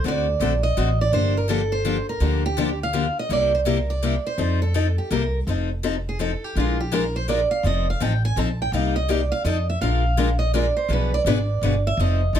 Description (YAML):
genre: acoustic string swing (jazz manouche)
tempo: 166 BPM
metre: 3/4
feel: swing 62% on 8ths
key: F mixolydian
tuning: A4 = 440 Hz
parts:
  - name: picked steel-string acoustic guitar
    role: melody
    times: 0.0-12.4 s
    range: F4 to A5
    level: -25 LUFS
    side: right 3 dB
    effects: none
  - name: picked steel-string acoustic guitar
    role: accompaniment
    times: 0.0-12.4 s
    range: B2 to B4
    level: -25 LUFS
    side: left 5 dB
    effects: none
  - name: upright bass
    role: bass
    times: 0.0-12.4 s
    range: F1 to F2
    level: -23 LUFS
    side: equal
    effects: none
room: light reverb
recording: close, detailed microphones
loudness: -20 LUFS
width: side -9 dB against mid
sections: 0.0-5.5 A section; 5.5-12.4 B section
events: steel-string acoustic guitar solo 5.5-12.4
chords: 0.0 D7b9; 1.1 Gm7; 3.3 C7; 4.4 F7; 5.1 C7; 5.5 F7; 6.6 Bb7; 7.6 F7; 8.7 Cm7; 9.4 F7; 9.8 Bb7; 10.9 Bdim7